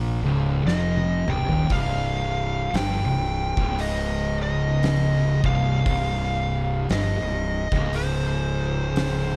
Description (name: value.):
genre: stoner and doom metal.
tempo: 58 BPM.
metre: 4/4.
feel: swing 59% on 8ths.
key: unclear.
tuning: A4 = 441 Hz.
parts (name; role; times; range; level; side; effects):
fuzz guitar; riff; 0.0-9.4 s; C2 to Bb2; -27 LUFS; equal; distortion.
fuzz fingered electric bass; bass; 0.0-9.4 s; C1 to Bb1; -30 LUFS; equal; overdrive.
fuzz lead guitar; melody; 0.7-9.4 s; C5 to G5; -31 LUFS; equal; distortion, delay.
oversized low-tuned drum kit; drums; 0.7-9.3 s; hi-hat, kick drum, snare drum, toms; -31 LUFS; equal; none.
room: studio ambience.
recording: dark, warm production.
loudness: -24 LUFS.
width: mono.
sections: 0.0-9.4 A section.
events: drum fill 0.7-1.7.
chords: 0.0 Cm.